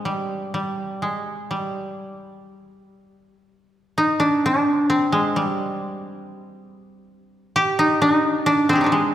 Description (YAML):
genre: japanese traditional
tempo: 60-68 BPM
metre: 2/4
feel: rubato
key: G miyako bushi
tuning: A4 = 437 Hz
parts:
  - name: koto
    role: solo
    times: 0.0-9.1 s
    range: G3 to C5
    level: -19 LUFS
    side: equal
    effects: none
room: wet concert hall reverb, RT60 2.4 s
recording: recorded in a church or concert hall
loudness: -19 LUFS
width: side -11 dB against mid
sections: 0.0-4.0 A section; 4.0-9.1 B section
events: none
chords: none